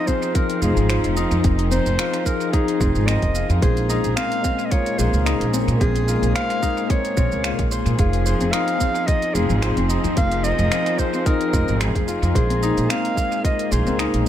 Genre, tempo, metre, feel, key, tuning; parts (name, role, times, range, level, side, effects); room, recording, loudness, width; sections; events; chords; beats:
organic downtempo; 110 BPM; 4/4; swing 54% on 16ths; F minor pentatonic; A4 = 440 Hz
breathy clarinet; melody; 0.0-14.3 s; Ab4 to F5; -25 LUFS; right 1 dB; tape echo
tine electric piano; accompaniment; 0.0-14.3 s; F3 to C5; -28 LUFS; left 3 dB; medium stereo tremolo, sidechain pumping, dub echo
rich studio string section; sustained chords; 0.0-14.3 s; Bb2 to Ab4; -30 LUFS; right 2 dB; sidechain pumping
Celtic harp; arpeggios; 0.0-14.3 s; C4 to C5; -25 LUFS; left 4 dB; dub echo
deep house drum kit; drums; 0.1-14.2 s; finger snaps, hi-hat, shaker; -30 LUFS; right 2 dB; overdrive, dub echo
electronic kick drum; drums; 0.1-13.6 s; -21 LUFS; right 1 dB
upright bass; bass; 0.6-14.3 s; F1 to Bb2; -21 LUFS; right 1 dB
light reverb; echo-heavy mix; -18 LUFS; side -11 dB against mid
0.0-14.3 A section
0.0 Fm7; 3.6 Bbm7; 8.0 Fm7; 12.4 Bb7(no3)
0.35 0.90 | 1.44 1.99 2.53 3.08 | 3.62 4.17 4.72 5.26 | 5.81 6.35 6.90 7.44 | 7.99 8.53 9.08 9.62 | 10.17 10.72 11.26 11.81 | 12.35 12.90 13.44 13.99